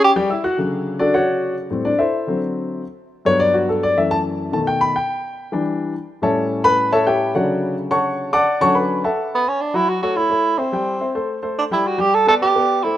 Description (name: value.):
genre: jazz.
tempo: 213 BPM.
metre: 4/4.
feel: straight.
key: D major.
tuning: A4 = 441 Hz.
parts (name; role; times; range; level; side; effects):
warm tenor saxophone; melody; 0.0-0.1, 9.3-13.0 s; B3 to A4; -17 LUFS; right 3 dB; none.
warm grand piano; accompaniment; 0.0-13.0 s; F#2 to F#6; -18 LUFS; left 2 dB; none.
room: light reverb, studio reverb.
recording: rough home demo mix.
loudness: -16 LUFS.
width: side -12 dB against mid.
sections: 0.6-9.6 A section; 9.6-13.0 B section.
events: grand piano solo 0.6-9.6.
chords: 0.0 Em69/G; 0.6 Dmaj7; 1.7 Am7; 2.3 D7; 2.8 Gmaj7; 4.0 F#m7; 4.5 B7; 5.1 Em7; 6.2 A7; 7.3 Dmaj9; 9.6 F#m7; 10.7 Am7; 11.3 C6; 11.8 G.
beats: 0.02 0.30 | 0.58 0.87 1.15 1.43 | 1.71 1.99 2.28 2.56 | 2.84 3.12 3.40 3.68 | 3.97 4.25 4.53 4.81 | 5.09 5.37 5.66 5.94 | 6.22 6.50 6.78 7.06 | 7.34 7.62 7.91 8.19 | 8.47 8.75 9.03 9.31 | 9.59 9.87 10.15 10.44 | 10.72 11.00 11.28 11.56 | 11.85 12.13 12.41 12.69.